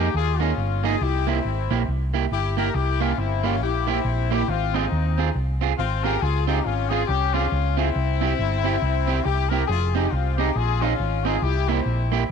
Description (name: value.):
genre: ska.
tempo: 138 BPM.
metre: 4/4.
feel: swing 60% on 8ths.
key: unclear.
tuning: A4 = 440 Hz.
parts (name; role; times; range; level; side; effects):
warm horn section; melody; 0.0-12.3 s; C4 to Bb4; -25 LUFS; left 11 dB; none.
electric guitar at the edge of break-up; accompaniment; 0.0-12.2 s; Bb3 to Ab4; -27 LUFS; right 13 dB; tape echo.
hollow-body short-scale fingered electric bass; bass; 0.0-12.2 s; F1 to Eb2; -23 LUFS; equal; none.
room: light reverb, small room ambience.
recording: 1960s-style stereo with parts hard left and right.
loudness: -20 LUFS.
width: side -6 dB against mid.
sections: 0.0-12.3 A section.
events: none.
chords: 0.0 Bb7sus4; 1.0 C7; 4.5 Ab6; 6.2 Dbmaj7; 8.0 C; 9.7 Fm7; 11.4 C7.